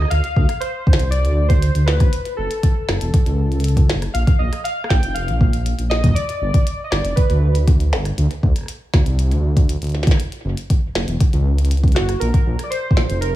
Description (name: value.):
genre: IDM.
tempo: 119 BPM.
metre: 4/4.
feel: straight.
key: unclear.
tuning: A4 = 440 Hz.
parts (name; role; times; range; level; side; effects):
warbly lo-fi synth keys; melody; 0.0-7.6, 11.9-13.4 s; F#4 to G5; -24 LUFS; equal; chorus, tape echo.
dark detuned saw bass; bass; 0.0-13.4 s; E1 to D2; -18 LUFS; equal; none.
glitchy drum kit; drums; 0.0-13.3 s; hi-hat, rim click, snare drum; -26 LUFS; equal; none.
electronic kick drum; drums; 0.4-13.0 s; none; -16 LUFS; equal; none.
room: little or no reverb.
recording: studio ambience.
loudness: -15 LUFS.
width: side -14 dB against mid.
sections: 0.0-13.4 A section.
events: none.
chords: 0.1 Dm7; 2.1 F#m; 4.1 Bb5; 6.2 G; 8.2 Csus2; 10.2 F#5; 12.2 Bb5.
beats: | 0.11 0.62 1.12 1.62 | 2.13 2.63 3.14 3.64 | 4.15 4.65 5.16 5.66 | 6.16 6.67 7.17 7.68 | 8.18 8.68 9.19 9.69 | 10.20 10.70 11.21 11.71 | 12.21 12.72 13.22.